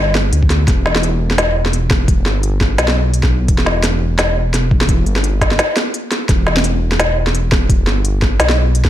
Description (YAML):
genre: half-time drum and bass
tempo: 171 BPM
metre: 4/4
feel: swing 56% on 16ths, half-time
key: E minor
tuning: A4 = 441 Hz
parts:
  - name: dark detuned saw bass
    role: bass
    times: 0.0-8.9 s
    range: E1 to D2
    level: -16 LUFS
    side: equal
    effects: none
  - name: organic electronic drum kit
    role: drums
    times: 0.2-8.9 s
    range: hi-hat, snare drum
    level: -16 LUFS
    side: equal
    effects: overdrive
  - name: electronic kick drum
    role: drums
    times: 0.4-8.9 s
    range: none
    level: -15 LUFS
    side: equal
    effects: overdrive
room: little or no reverb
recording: none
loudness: -12 LUFS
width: side -12 dB against mid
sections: 0.0-8.9 A section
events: break 5.6-6.3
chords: none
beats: 0.33 | 0.68 1.03 1.38 1.73 | 2.08 2.43 2.78 3.13 | 3.48 3.83 4.19 4.54 | 4.89 5.24 5.59 5.94 | 6.29 6.64 6.99 7.34 | 7.70 8.05 8.40 8.75